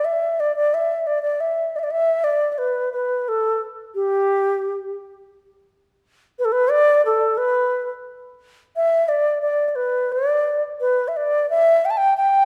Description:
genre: chinese traditional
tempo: 88 BPM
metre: 2/4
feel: rubato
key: G gong mode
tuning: A4 = 440 Hz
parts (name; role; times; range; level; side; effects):
- bright reedy xiao; solo; 0.0-12.4 s; G4 to A5; -20 LUFS; equal; none
room: moderate scoring stage reverb, RT60 1.6 s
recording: none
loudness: -20 LUFS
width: mono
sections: 0.0-5.3 A section; 5.3-12.4 B section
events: none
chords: none

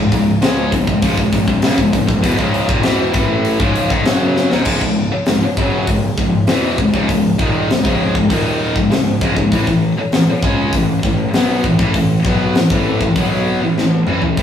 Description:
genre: heavy metal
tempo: 99 BPM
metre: 4/4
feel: straight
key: C# minor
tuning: A4 = 440 Hz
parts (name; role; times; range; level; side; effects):
- heavy high-gain guitar; riff; 0.0-14.4 s; C#2 to C#4; -15 LUFS; equal; distortion
- fuzz picked electric bass; bass; 0.0-14.4 s; C#1 to C#2; -22 LUFS; left 1 dB; overdrive
- tight metal drum kit; drums; 0.1-14.4 s; crash cymbal, hi-hat, kick drum, snare drum, toms; -18 LUFS; left 2 dB; none
room: moderate studio reverb, RT60 0.5 s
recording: rough rehearsal-room recording, studio reverb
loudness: -13 LUFS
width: side -9 dB against mid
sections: 0.0-4.7 A section; 4.7-14.4 B section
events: drum fill 4.4-4.7, 13.8-14.4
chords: 0.0 C#m; 9.5 A5

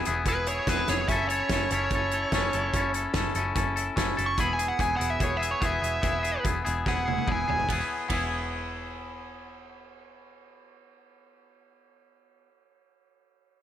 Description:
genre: indie rock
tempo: 145 BPM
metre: 4/4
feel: straight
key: E major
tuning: A4 = 440 Hz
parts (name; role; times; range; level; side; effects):
- twangy electric guitar; riff; 0.0-12.5 s; B3 to A4; -29 LUFS; left 3 dB; none
- overdriven picked electric bass; bass; 0.1-12.5 s; E1 to F#1; -33 LUFS; right 1 dB; none
- loose indie drum kit; drums; 0.1-8.2 s; hi-hat, kick drum, ride cymbal, snare drum, toms; -31 LUFS; right 1 dB; none
- nasal lead guitar with a parked wah; melody; 0.3-7.7 s; B4 to C#6; -30 LUFS; right 2 dB; overdrive, digital delay
room: light reverb, studio ambience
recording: none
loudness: -24 LUFS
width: side -10 dB against mid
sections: 0.0-7.7 A section; 7.7-11.0 B section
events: lead electric guitar solo 0.0-7.7; drum fill 6.9-7.7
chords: 0.0 E; 1.1 F#m7; 4.4 E

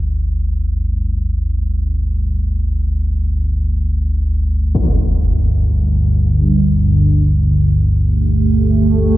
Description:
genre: dark ambient drone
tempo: free time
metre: none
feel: none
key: unclear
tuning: A4 = 441 Hz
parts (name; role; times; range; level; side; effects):
- deep rumbling drone; drone; 0.0-9.2 s; G1 to D2; -15 LUFS; equal; built-in reverb
- impact; percussion; 4.7-5.0 s; none; -20 LUFS; left 1 dB; low-pass filter on sfx
- sweeping resonant pad; sustained chords; 4.8-9.2 s; G2 to G4; -14 LUFS; right 1 dB; chorus
room: little or no reverb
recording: none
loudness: -13 LUFS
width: side -16 dB against mid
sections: 0.0-9.2 A section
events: none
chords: 0.0 G5

